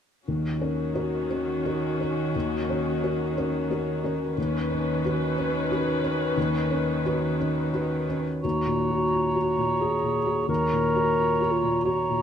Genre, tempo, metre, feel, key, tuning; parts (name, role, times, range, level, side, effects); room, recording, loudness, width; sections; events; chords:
cinematic, emotional film score for orchestra; 88 BPM; 3/4; rubato; Eb minor; A4 = 440 Hz
dark studio viola section; accompaniment; 0.3-8.2 s; Db4 to B4; -30 LUFS; left 2 dB
felt-muted upright piano; accompaniment; 0.3-12.2 s; Eb2 to B4; -27 LUFS; left 2 dB
warm studio cello section; bass; 0.3-8.2 s; Eb3; -31 LUFS; right 2 dB
dark clarinet; second line; 8.4-12.2 s; F4 to Bb4; -26 LUFS; equal
mellow cor anglais; second line; 8.4-12.2 s; Db5; -28 LUFS; right 5 dB
mellow silver concert flute; second line; 8.4-12.2 s; Bb5; -30 LUFS; equal
moderate scoring stage reverb, RT60 1.9 s; close, detailed microphones; -23 LUFS; side -8 dB against mid
0.3-8.4 A section; 8.4-12.2 B section
0.3 Ebm7; 4.4 Badd9/D#; 8.4 Ebm7